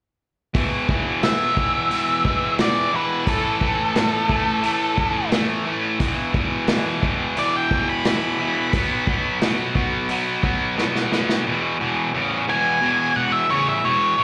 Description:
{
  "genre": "blues rock power trio and southern rock",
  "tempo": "88 BPM",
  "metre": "4/4",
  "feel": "straight",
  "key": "unclear",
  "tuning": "A4 = 440 Hz",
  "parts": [
    { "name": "distorted electric guitar", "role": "riff", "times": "0.5-14.2 s", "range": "E2 to B3", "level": "-24 LUFS", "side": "equal", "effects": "distortion, slapback echo" },
    { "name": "vintage drum kit", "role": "drums", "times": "0.5-11.4 s", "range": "hi-hat, kick drum, snare drum", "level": "-26 LUFS", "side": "equal", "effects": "none" },
    { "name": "octave-fuzz lead guitar", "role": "melody", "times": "1.2-14.2 s", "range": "A4 to B5", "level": "-24 LUFS", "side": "equal", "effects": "distortion, slapback echo" }
  ],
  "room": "light reverb",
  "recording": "live gig heard through the venue's PA, club reverb",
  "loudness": "-21 LUFS",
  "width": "mono",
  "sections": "0.6-11.5 A section; 11.5-14.2 B section",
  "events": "drum fill 10.8-11.5",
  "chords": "0.6 E5; 3.3 A5; 6.0 E5; 8.7 B5; 11.5 E",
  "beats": "| 0.55 1.23 1.91 2.60 | 3.28 3.96 4.64 5.32 | 6.00 6.69 7.37 8.05 | 8.73 9.41 10.09 10.78 | 11.46 12.14 12.82 13.49 | 14.17"
}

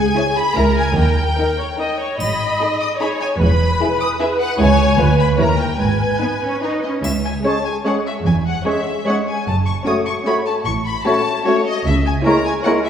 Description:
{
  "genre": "cinematic, playful, whimsical film cue",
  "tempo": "150 BPM",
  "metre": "3/4",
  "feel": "straight",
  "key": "G# minor, C# minor from 7.0 s",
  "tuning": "A4 = 440 Hz",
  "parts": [
    { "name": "warm studio violin section", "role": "melody", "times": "0.0-12.9 s", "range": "C#5 to D#6", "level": "-22 LUFS", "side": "left 3 dB", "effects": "none" },
    { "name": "warm studio viola section", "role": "accompaniment", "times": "0.0-12.9 s", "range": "G#3 to D#5", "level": "-22 LUFS", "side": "right 1 dB", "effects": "none" },
    { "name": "clear studio double bass section", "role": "bass", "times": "0.0-12.2 s", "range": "E1 to D#2", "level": "-21 LUFS", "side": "right 1 dB", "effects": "none" },
    { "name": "warm studio cello section", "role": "bass", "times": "0.0-12.2 s", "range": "C#2 to D#4", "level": "-21 LUFS", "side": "right 2 dB", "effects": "none" },
    { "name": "rich studio violin section", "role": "second line", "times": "0.2-12.9 s", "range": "D#4 to C#5", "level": "-25 LUFS", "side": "left 2 dB", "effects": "none" },
    { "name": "triangle", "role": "percussion", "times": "2.2-3.0, 7.0-7.8 s", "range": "none", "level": "-34 LUFS", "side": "left 1 dB", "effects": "none" },
    { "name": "large flute ensemble", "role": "second line", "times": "7.4-12.7 s", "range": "C#6", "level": "-26 LUFS", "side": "left 1 dB", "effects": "none" },
    { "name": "warm oboe", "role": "second line", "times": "7.4-12.8 s", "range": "A#4 to C#5", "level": "-28 LUFS", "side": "left 1 dB", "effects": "none" },
    { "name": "mellow bassoon", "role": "accompaniment", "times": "7.4-12.8 s", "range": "G#3 to A3", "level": "-23 LUFS", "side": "equal", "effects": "none" },
    { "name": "clear clarinet", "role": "second line", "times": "7.5-12.8 s", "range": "E4 to G#4", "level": "-26 LUFS", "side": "left 2 dB", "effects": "none" }
  ],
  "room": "wet scoring stage reverb, RT60 1.9 s",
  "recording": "heard from further back in the room",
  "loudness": "-15 LUFS",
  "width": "side -8 dB against mid",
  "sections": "0.0-7.0 A section; 7.0-12.9 B section",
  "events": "none",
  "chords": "0.0 C#m; 0.6 A#dim/C#; 1.0 D#; 2.2 G#m; 3.4 E; 4.6 C#m; 5.0 Ddim7; 5.4 D#7b9; 5.8 G#m; 7.0 C#5; 8.3 C#m/E; 9.5 F#m; 10.7 F#m/A; 11.9 A#m7b5/C#",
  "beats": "0.17 0.57 | 0.97 1.38 1.79 | 2.20 2.60 3.00 | 3.40 3.81 4.20 | 4.60 5.00 5.40 | 5.80 6.22 6.63 | 7.04 7.45 7.85 | 8.25 8.66 9.06 | 9.46 9.86 10.26 | 10.66 11.06 11.46 | 11.86 12.26 12.65"
}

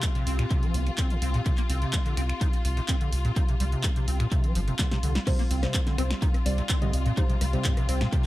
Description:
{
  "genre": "acid house",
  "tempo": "126 BPM",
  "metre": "4/4",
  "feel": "straight",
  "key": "unclear",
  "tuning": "A4 = 440 Hz",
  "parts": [
    { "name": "rich studio string section", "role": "sustained chords", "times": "0.0-8.3 s", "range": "F4", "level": "-37 LUFS", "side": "left 4 dB", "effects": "sidechain pumping" },
    { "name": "acid bass, square", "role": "riff", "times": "0.0-8.3 s", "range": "Bb2 to Eb4", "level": "-31 LUFS", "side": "equal", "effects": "ensemble chorus, sidechain pumping, tape echo" },
    { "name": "electronic kick drum", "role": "drums", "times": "0.0-8.2 s", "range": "none", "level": "-26 LUFS", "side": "equal", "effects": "small room ambience" },
    { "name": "punchy analog drum machine", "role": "drums", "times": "0.0-8.3 s", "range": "crash cymbal, finger snaps, handclaps, hi-hat, rim click, snare drum, toms", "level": "-33 LUFS", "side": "equal", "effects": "overdrive, small room ambience, analog delay" },
    { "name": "warbly tape-like pad", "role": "texture", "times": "0.0-8.3 s", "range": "C4 to C6", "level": "-40 LUFS", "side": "equal", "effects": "chorus, built-in reverb, sidechain pumping" },
    { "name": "round analog bass", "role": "bass", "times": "0.3-8.0 s", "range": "G1 to C2", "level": "-26 LUFS", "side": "equal", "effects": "tube saturation, sidechain pumping" },
    { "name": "deep mellow chord stab", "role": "stabs", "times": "5.3-8.0 s", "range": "G3 to Eb5", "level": "-34 LUFS", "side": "equal", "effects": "chorus, cassette tape, analog delay" }
  ],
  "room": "digital ambience",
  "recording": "echo-heavy mix",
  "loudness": "-23 LUFS",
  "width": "side -16 dB against mid",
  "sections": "0.0-5.3 A section; 5.3-8.3 B section",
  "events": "drum fill 4.8-5.3; drop 5.3-8.3",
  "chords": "0.0 C5",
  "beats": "0.03 0.51 0.98 | 1.46 1.94 2.41 2.89 | 3.36 3.84 4.32 4.79 | 5.27 5.75 6.22 6.70 | 7.17 7.65 8.13"
}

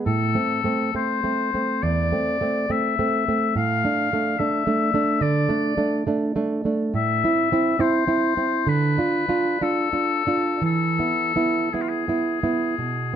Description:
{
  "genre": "romantic duo for oboe and classical guitar",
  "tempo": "54-73 BPM",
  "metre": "4/4",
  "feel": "rubato",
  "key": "A minor",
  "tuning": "A4 = 440 Hz",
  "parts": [
    { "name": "nylon-string guitar", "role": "accompaniment", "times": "0.0-13.1 s", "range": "E2 to F4", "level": "-22 LUFS", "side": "right 3 dB", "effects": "none" },
    { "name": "clear oboe", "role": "melody", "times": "0.1-13.2 s", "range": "F4 to F5", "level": "-24 LUFS", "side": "left 6 dB", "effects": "none" }
  ],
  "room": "moderate recital hall reverb, RT60 1.4 s",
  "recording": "close, detailed microphones",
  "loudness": "-20 LUFS",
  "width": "side -9 dB against mid",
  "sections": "0.0-13.2 A section",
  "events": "none",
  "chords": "0.1 Am; 3.6 Dm/A; 7.0 Am; 8.7 Dm; 10.6 E",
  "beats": "| 0.07 0.96 1.83 2.70 | 3.56 4.40 5.22 6.09 | 6.96 7.81 8.68 9.61 | 10.64 11.73 12.78"
}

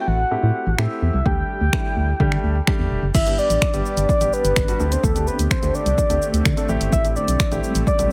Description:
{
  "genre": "dance-pop",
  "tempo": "127 BPM",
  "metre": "4/4",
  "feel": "straight",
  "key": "G major",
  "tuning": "A4 = 440 Hz",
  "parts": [
    { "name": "soft octave-layered synth lead", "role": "melody", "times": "0.0-8.1 s", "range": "A4 to G5", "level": "-25 LUFS", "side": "equal", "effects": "chorus, digital delay" },
    { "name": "warm grand piano", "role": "accompaniment", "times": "0.0-8.1 s", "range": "G3 to A4", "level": "-30 LUFS", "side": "equal", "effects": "sidechain pumping" },
    { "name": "organ-like FM bass", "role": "bass", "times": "0.1-8.1 s", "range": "E1 to D3", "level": "-23 LUFS", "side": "equal", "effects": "sidechain pumping" },
    { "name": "deep house drum kit", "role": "drums", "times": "0.8-8.1 s", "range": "crash cymbal, finger snaps, hi-hat, kick drum, shaker", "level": "-24 LUFS", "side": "equal", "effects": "none" },
    { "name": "granular cloud pad", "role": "sustained chords", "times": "4.4-8.1 s", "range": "D3 to G4", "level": "-32 LUFS", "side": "equal", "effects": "built-in reverb, sidechain pumping" }
  ],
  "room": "digital ambience",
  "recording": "heavily compressed radio sound",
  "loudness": "-20 LUFS",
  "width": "mono",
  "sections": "0.0-3.1 A section; 3.1-8.1 B section",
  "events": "none",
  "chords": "0.0 Am7; 1.3 Dsus4; 3.1 G; 4.8 D7sus4; 6.7 Am7",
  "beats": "0.31 0.78 | 1.26 1.73 2.20 2.67 | 3.15 3.62 4.09 4.56 | 5.04 5.51 5.98 6.45 | 6.93 7.40 7.87"
}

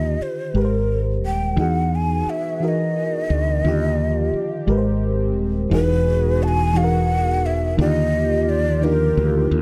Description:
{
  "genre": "R&B",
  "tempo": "58 BPM (dotted quarters)",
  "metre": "6/8",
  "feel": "straight",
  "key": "unclear",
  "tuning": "A4 = 440 Hz",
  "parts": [
    { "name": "breathy mellow shakuhachi", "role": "melody", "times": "0.0-9.6 s", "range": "Bb4 to A5", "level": "-26 LUFS", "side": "equal", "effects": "none" },
    { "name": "mellow FM electric piano", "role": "accompaniment", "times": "0.0-9.6 s", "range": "D3 to C5", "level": "-25 LUFS", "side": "equal", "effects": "chorus" },
    { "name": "mellow fretless electric bass", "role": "bass", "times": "0.0-9.6 s", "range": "Eb1 to E2", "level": "-23 LUFS", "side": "equal", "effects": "none" },
    { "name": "warm analog pad", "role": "sustained chords", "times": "1.6-9.6 s", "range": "E3 to G#4", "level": "-34 LUFS", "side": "equal", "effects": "chorus" }
  ],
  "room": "light reverb",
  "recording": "dark, warm production",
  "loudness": "-20 LUFS",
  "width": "mono",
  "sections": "0.0-5.7 A section; 5.7-9.6 B section",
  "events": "none",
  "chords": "0.0 Ebmaj9; 0.5 Abmaj9; 1.6 Emaj9; 3.6 Ebmaj9; 4.7 Abmaj9; 5.7 Emaj9; 7.8 Ebmaj9",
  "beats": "0.54 | 1.57 2.60 | 3.64 4.67 | 5.71 6.74 | 7.78 8.81"
}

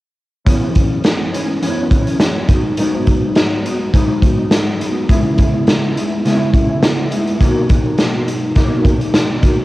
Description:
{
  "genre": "indie pop, bedroom pop",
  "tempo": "104 BPM",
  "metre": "4/4",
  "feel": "swing 55% on 16ths",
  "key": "unclear",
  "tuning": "A4 = 440 Hz",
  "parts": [
    { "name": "mellow electric guitar", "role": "accompaniment", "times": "0.5-9.6 s", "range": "F#2 to E4", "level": "-17 LUFS", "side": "equal", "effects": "ensemble chorus, warbly pitch drift, cassette tape" },
    { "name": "raw garage drum kit", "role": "drums", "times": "0.5-9.6 s", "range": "hi-hat, kick drum, snare drum", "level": "-14 LUFS", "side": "equal", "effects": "cassette tape" }
  ],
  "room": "light reverb, small room ambience",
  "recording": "home recording on cassette",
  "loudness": "-13 LUFS",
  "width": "side -18 dB against mid",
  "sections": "0.5-9.6 A section",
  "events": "none",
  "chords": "0.5 F#7sus4; 2.5 G#m7; 5.1 C#m7; 7.4 Bmaj7",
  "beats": "| 0.47 1.05 1.63 2.21 | 2.78 3.36 3.94 4.52 | 5.10 5.68 6.25 6.83 | 7.41 7.99 8.56 9.14"
}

